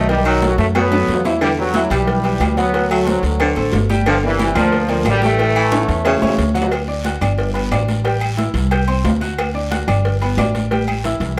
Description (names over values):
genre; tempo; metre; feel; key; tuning
latin, salsa; 181 BPM; 4/4; straight; D major; A4 = 439 Hz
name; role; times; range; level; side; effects
bright trombone section; melody; 0.0-6.4 s; C3 to B3; -22 LUFS; equal; none
clear upright piano; accompaniment; 0.0-11.4 s; D#3 to G6; -25 LUFS; equal; none
upright bass; bass; 0.0-11.4 s; G1 to F#2; -22 LUFS; equal; none
agogo bells and timbales; percussion; 0.1-11.2 s; none; -27 LUFS; equal; none
congas; percussion; 0.1-11.3 s; none; -28 LUFS; equal; none
cowbell; percussion; 0.1-11.4 s; none; -29 LUFS; equal; none
guiro; percussion; 0.1-11.4 s; none; -37 LUFS; equal; none
warm baritone saxophone; second line; 0.3-6.4 s; B2 to G3; -24 LUFS; equal; none
claves; percussion; 0.3-11.0 s; none; -34 LUFS; equal; none
room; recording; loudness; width
moderate studio reverb, RT60 0.8 s; none; -17 LUFS; mono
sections
0.0-6.7 A section; 6.7-11.4 B section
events
drum fill 0.6-1.4, 5.7-6.7, 10.7-11.4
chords
0.1 B7; 1.4 Em7; 2.7 D7; 4.1 Gm7; 5.4 A7; 6.7 D; 7.4 G; 8.1 A5; 8.7 C5; 9.4 D; 10.0 G; 10.7 A5